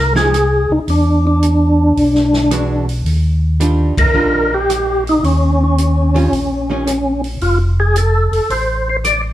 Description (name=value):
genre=soul jazz organ trio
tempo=110 BPM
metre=4/4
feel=swing 68% on 8ths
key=unclear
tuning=A4 = 440 Hz
part: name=percussive tonewheel organ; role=melody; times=0.0-9.2 s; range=Db4 to D5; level=-15 LUFS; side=equal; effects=slow rotary speaker, overdrive, chorus vibrato
part: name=mellow tonewheel organ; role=bass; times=0.0-9.3 s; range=F1 to E2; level=-16 LUFS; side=equal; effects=overdrive, chorus vibrato, slow rotary speaker
part: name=archtop guitar, miked and amplified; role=accompaniment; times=0.1-6.9 s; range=Eb3 to G4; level=-20 LUFS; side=right 2 dB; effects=none
part: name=open jazz drum kit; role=drums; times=0.2-9.2 s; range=hi-hat, kick drum, ride cymbal, rim click, snare drum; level=-24 LUFS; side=equal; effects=none
room=wet stone room reverb, RT60 1.3 s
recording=band playing live in one room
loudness=-12 LUFS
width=side -13 dB against mid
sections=0.0-9.3 A section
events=band accent 3.9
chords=0.0 Fm9; 0.9 E9; 3.1 Ebmaj9; 5.2 Eb9; 7.4 F